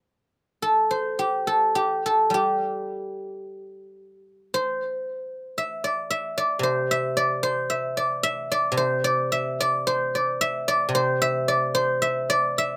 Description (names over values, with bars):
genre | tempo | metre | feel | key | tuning
chinese traditional, Chinese solo plucked strings | 52-58 BPM | 4/4 | rubato | C gong mode | A4 = 435 Hz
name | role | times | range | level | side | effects
guzheng | solo | 0.6-12.8 s | C3 to E5 | -24 LUFS | equal | none
room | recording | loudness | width
little or no reverb | recorded outdoors, with no room sound | -24 LUFS | mono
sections
0.0-12.8 A section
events
none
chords
none